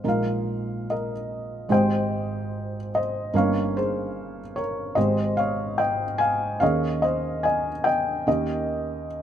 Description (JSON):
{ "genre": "folk", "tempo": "73 BPM", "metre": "4/4", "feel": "straight", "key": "unclear", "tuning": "A4 = 440 Hz", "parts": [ { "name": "felt-muted upright piano", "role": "melody", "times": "0.0-9.2 s", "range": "G1 to Ab5", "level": "-22 LUFS", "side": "equal", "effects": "none" } ], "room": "light reverb", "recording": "minimal, uncompressed stereo recording", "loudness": "-22 LUFS", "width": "side -10 dB against mid", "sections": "0.0-9.2 A section", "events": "none", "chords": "0.0 Ebsus4/Bb; 1.7 Abmaj7; 3.3 Eb7/G; 5.0 Abmaj7; 6.6 Eb7sus4; 8.3 Eb7" }